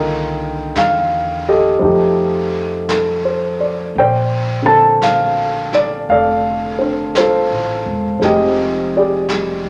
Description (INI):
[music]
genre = jazz ballad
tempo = 56 BPM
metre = 4/4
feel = swing 66% on 8ths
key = F major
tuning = A4 = 440 Hz
[part]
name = warm grand piano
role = accompaniment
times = 0.0-9.7 s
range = D3 to A5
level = -16 LUFS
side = equal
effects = none
[part]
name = upright bass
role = bass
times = 0.0-9.7 s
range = E1 to F2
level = -26 LUFS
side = equal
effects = none
[part]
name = vintage brush drum kit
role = drums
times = 0.8-9.7 s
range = brushed snare drum, hi-hat, snare drum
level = -29 LUFS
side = equal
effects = none
[sound]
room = wet large studio reverb, RT60 0.9 s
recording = none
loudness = -16 LUFS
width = mono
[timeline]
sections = 0.0-9.7 A section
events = none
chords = 0.0 Cm11; 1.8 F9; 3.9 Bbmaj9; 8.2 Fm9